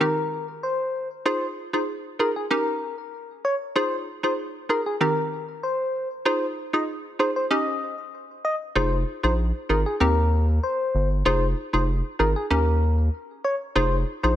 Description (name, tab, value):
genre	dancehall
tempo	96 BPM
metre	4/4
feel	straight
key	F minor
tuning	A4 = 440 Hz
part	soft struck synth lead	melody	0.0-14.3 s	Ab4 to Eb5	-26 LUFS	left 2 dB	chorus, ping-pong delay
part	hollow square pluck	accompaniment	0.0-14.4 s	Eb3 to Ab4	-26 LUFS	right 2 dB	chorus
part	round analog bass	bass	8.8-14.4 s	F1 to Eb2	-22 LUFS	equal	none
room	light reverb, digital ambience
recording	none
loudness	-22 LUFS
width	side -12 dB against mid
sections	0.0-14.4 A section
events	none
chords	0.0 Cm/Eb; 1.3 Fm7; 2.5 Eb7; 3.8 Fm7; 5.0 Cm/Eb; 6.3 Fm7; 7.5 Eb7; 8.8 Fm7; 10.0 Cm/Eb; 11.3 Fm7; 12.5 Eb7; 13.8 Fm7